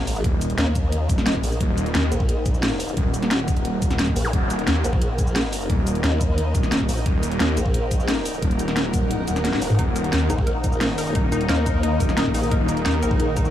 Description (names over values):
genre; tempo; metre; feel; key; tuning
dark technical drum and bass; 176 BPM; 4/4; straight; Eb minor; A4 = 440 Hz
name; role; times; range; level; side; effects
formant-sweep wobble bass; bass; 0.0-13.5 s; Fb1 to Eb2; -24 LUFS; equal; chorus
impact and zap; sound effects; 0.0-0.2, 4.2-4.3 s; none; -34 LUFS; equal; none
granular cloud pad; texture; 0.1-13.5 s; Eb4 to Gb5; -30 LUFS; equal; built-in reverb, sidechain pumping
drum and bass drum kit; drums; 0.1-13.5 s; hi-hat, shaker, snare drum, toms; -26 LUFS; equal; overdrive
wide detuned saw bass; bass; 0.2-13.0 s; Eb1 to Eb2; -24 LUFS; equal; chorus, overdrive, sidechain pumping
electronic kick drum; drums; 0.2-13.4 s; none; -22 LUFS; equal; overdrive
sweeping resonant pad; sustained chords; 9.8-13.5 s; Eb3 to Eb4; -26 LUFS; left 2 dB; chorus, sidechain pumping
warbly dusty pluck; arpeggios; 9.8-13.4 s; Eb4 to Bb4; -30 LUFS; left 1 dB; chorus, cassette tape, sidechain pumping, tape echo
room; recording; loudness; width
light reverb; small room ambience; -19 LUFS; side -11 dB against mid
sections
0.0-13.5 A section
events
impact 0.0; kick drops out 9.1-9.8; drum fill 9.4-9.8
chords
0.0 Eb5